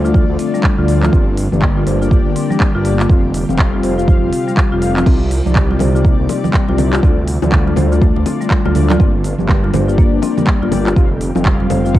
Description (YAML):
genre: afro house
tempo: 122 BPM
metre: 4/4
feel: swing 60% on 16ths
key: unclear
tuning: A4 = 440 Hz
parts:
  - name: ethereal airy pad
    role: sustained chords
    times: 0.0-12.0 s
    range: C3 to D5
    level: -24 LUFS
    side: right 1 dB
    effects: ensemble chorus, built-in reverb, sidechain pumping, cassette tape
  - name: marimba with medium mallets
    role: arpeggios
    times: 0.0-12.0 s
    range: G3 to C5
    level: -21 LUFS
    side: right 1 dB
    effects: sidechain pumping, cassette tape, analog delay
  - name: mellow synth brass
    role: stabs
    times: 0.0-12.0 s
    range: A3 to F5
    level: -20 LUFS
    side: left 8 dB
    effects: chorus, sidechain pumping, cassette tape, analog delay
  - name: dark detuned saw bass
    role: bass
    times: 0.0-12.0 s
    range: F1 to D2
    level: -18 LUFS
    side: right 1 dB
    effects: sidechain pumping
  - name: afro-pop drum kit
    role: drums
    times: 0.1-12.0 s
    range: crash cymbal, handclaps, hi-hat, shaker, toms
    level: -22 LUFS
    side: equal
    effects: cassette tape
  - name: electronic kick drum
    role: drums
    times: 0.1-12.0 s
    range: none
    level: -13 LUFS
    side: right 1 dB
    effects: cassette tape
  - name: bongos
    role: percussion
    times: 5.1-12.0 s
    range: none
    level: -24 LUFS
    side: left 8 dB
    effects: none
  - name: congas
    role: percussion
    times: 5.5-11.8 s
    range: none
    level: -22 LUFS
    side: right 7 dB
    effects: none
room: digital ambience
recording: home recording on cassette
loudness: -11 LUFS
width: side -14 dB against mid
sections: 0.0-12.0 A section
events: none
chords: 0.0 Dm; 1.1 Gm; 3.1 Fsus2; 5.1 Cmadd9; 7.0 Dm; 9.0 Gm; 11.0 Fsus2